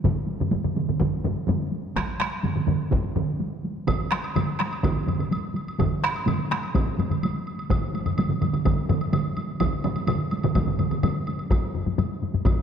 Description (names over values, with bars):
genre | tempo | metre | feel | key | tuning
japanese traditional, taiko drum ensemble | 126 BPM | 4/4 | straight | none | none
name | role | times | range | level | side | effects
taiko ensemble | percussion | 0.0-12.6 s | none | -29 LUFS | equal | none
taiko ensemble | percussion | 0.0-12.6 s | none | -28 LUFS | left 4 dB | none
taiko ensemble | percussion | 0.0-11.1 s | none | -28 LUFS | right 5 dB | none
taiko ensemble | percussion | 0.0-12.6 s | none | -28 LUFS | equal | none
woodblock | percussion | 3.9-12.6 s | none | -36 LUFS | right 2 dB | none
room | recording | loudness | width
wet concert hall reverb, RT60 2.2 s | dark, warm production | -23 LUFS | side -7 dB against mid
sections
0.0-11.5 A section; 11.5-12.6 B section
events
none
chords
none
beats
| 0.05 0.53 1.01 1.49 | 1.97 2.45 2.93 3.41 | 3.88 4.36 4.84 5.32 | 5.80 6.28 6.75 7.23 | 7.71 8.18 8.66 9.13 | 9.61 10.09 10.56 11.04 | 11.51 11.98 12.46